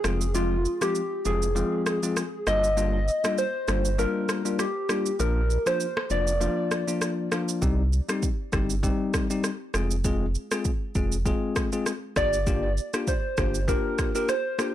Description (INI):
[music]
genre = afrobeats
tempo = 99 BPM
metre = 4/4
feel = swing 55% on 16ths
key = unclear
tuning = A4 = 440 Hz
[part]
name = soft struck synth lead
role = melody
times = 0.0-7.3, 12.2-14.7 s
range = F4 to Eb5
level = -27 LUFS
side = equal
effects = chorus, plate reverb, tape echo
[part]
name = bell-like tine electric piano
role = accompaniment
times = 0.0-14.7 s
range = F3 to Ab4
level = -29 LUFS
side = left 3 dB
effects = plate reverb
[part]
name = sub bass with octave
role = bass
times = 0.0-13.8 s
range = F1 to C2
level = -26 LUFS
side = right 1 dB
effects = none
[part]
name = afro-pop drum kit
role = drums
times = 0.0-14.7 s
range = kick drum, rim click, shaker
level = -29 LUFS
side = right 1 dB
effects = soft clipping on snare
[sound]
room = moderate studio reverb, RT60 0.6 s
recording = blown-out, overdriven recording, overdrive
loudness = -23 LUFS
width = side -12 dB against mid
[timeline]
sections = 0.0-14.7 A section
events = break 0.0-7.6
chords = 0.0 Fm; 2.5 Ebmaj7/G; 5.2 Bb; 7.6 Cm; 9.7 Fm; 12.2 Gm7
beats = | 0.35 0.95 1.56 2.17 | 2.77 3.38 3.98 4.59 | 5.20 5.80 6.41 7.01 | 7.62 8.23 8.83 9.44 | 10.04 10.65 11.26 11.86 | 12.47 13.08 13.68 14.29